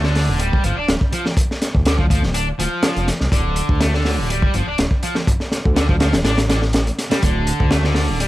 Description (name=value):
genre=breakbeat, breaks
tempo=123 BPM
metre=4/4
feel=swing 53% on 16ths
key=D minor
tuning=A4 = 440 Hz
part: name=fuzz guitar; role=riff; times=0.0-8.3 s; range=D3 to D4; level=-23 LUFS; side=equal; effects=distortion, vintage 12-bit sampler grit, digital delay
part: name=dark detuned saw bass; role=bass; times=0.0-8.3 s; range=D1 to D2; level=-19 LUFS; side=equal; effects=none
part: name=crunchy breakbeat drum kit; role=drums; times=0.0-8.3 s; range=hi-hat, kick drum, snare drum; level=-18 LUFS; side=equal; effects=none
room=little or no reverb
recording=vinyl crackle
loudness=-16 LUFS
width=side -16 dB against mid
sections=0.0-8.3 A section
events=none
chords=0.0 Dm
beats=0.40 0.89 | 1.37 1.86 2.35 2.84 | 3.32 3.81 4.30 4.79 | 5.28 5.76 6.25 6.74 | 7.23 7.71 8.20